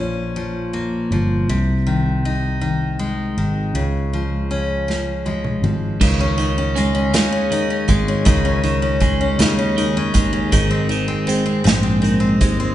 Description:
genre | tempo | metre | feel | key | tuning
six-eight pop ballad | 53 BPM (dotted quarters) | 6/8 | straight | unclear | A4 = 438 Hz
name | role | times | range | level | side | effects
picked steel-string acoustic guitar | accompaniment | 0.0-12.7 s | Ab2 to Eb4 | -20 LUFS | left 2 dB | none
sustaining fretless electric bass | bass | 0.0-12.7 s | G1 to Eb2 | -21 LUFS | right 1 dB | none
unplugged drum kit | drums | 4.9-12.6 s | crash cymbal, hi-hat, kick drum, snare drum, toms | -20 LUFS | right 1 dB | none
clean electric guitar | arpeggios | 6.0-12.7 s | Eb3 to Db4 | -24 LUFS | right 5 dB | none
room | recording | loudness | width
wet recital hall reverb, RT60 1.4 s | recorded in a church or concert hall, nothing above 10.4 kHz | -16 LUFS | side -12 dB against mid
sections
0.0-6.0 A section; 6.0-12.7 B section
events
drum fill 4.9-6.0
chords
0.0 Bbm; 1.5 Ab/C; 3.8 Db; 6.0 Dbsus2; 10.5 Ab

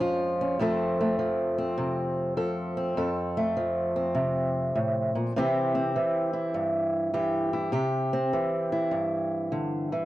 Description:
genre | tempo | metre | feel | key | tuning
blues | 101 BPM | 4/4 | swing 67% on 8ths | F major | A4 = 444 Hz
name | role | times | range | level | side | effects
fingerpicked old ladder-braced acoustic guitar | solo | 0.0-10.1 s | F2 to A4 | -25 LUFS | equal | none
room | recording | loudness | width
small room reverb | dry, close 1970s-style studio recording | -25 LUFS | side -15 dB against mid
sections
0.0-10.1 A section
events
none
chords
0.0 Bbm7 (rootless); 0.6 F; 5.3 C

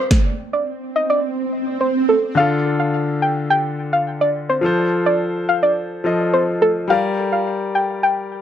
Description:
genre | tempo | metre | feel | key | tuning
dancehall | 106 BPM | 4/4 | straight | D phrygian | A4 = 440 Hz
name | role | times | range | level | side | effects
soft round pluck | melody | 0.0-8.1 s | A4 to G5 | -18 LUFS | equal | chorus, low-pass filter, tape echo
clear grand piano | accompaniment | 0.0-8.4 s | D3 to Eb5 | -20 LUFS | left 2 dB | sidechain pumping, low-pass filter
swell | sound effects | 0.7-2.4 s | none | -22 LUFS | right 3 dB | none
room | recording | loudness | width
light reverb | dark, warm production | -16 LUFS | side -10 dB against mid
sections
0.0-2.4 A section; 2.4-8.4 B section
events
swell 0.7-2.4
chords
0.1 N.C.; 2.4 Dm; 4.6 F; 6.9 Gm

